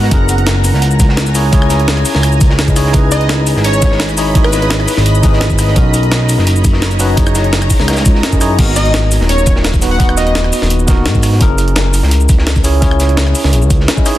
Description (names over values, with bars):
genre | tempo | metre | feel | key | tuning
liquid drum and bass | 170 BPM | 4/4 | straight | unclear | A4 = 439 Hz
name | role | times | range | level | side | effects
tine electric piano | accompaniment | 0.0-14.2 s | B3 to D#5 | -18 LUFS | equal | medium stereo tremolo, tape echo
shimmering ambient pad | sustained chords | 0.0-8.6 s | C#5 to B5 | -22 LUFS | right 1 dB | chorus, built-in reverb, sidechain pumping
smooth synth bass | bass | 0.0-13.9 s | D#1 to G#2 | -13 LUFS | equal | none
crunchy breakbeat drum kit | drums | 0.0-14.2 s | hi-hat, snare drum | -24 LUFS | equal | high-pass filter on hats, small room ambience, high-pass filter on snare, high-pass filter on room
electronic kick drum | drums | 0.1-14.0 s | none | -12 LUFS | equal | overdrive, small room ambience
jungle sampler-style drum kit | drums | 0.1-14.2 s | crash cymbal, hi-hat, rim click, shaker, snare drum | -18 LUFS | equal | small room ambience
plucky unison lead | melody | 3.1-4.9, 8.8-10.7 s | B4 to F#5 | -19 LUFS | equal | tape echo
room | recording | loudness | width
light reverb, digital ambience | dense, heavily limited modern master | -9 LUFS | side -14 dB against mid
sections
0.0-8.6 A section; 8.6-14.2 A section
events
drop 0.0-8.6, 8.6-14.2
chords
0.1 F#7; 2.8 C#m9; 5.8 Bmaj9; 7.2 F#13; 8.6 G#m9; 11.4 F#7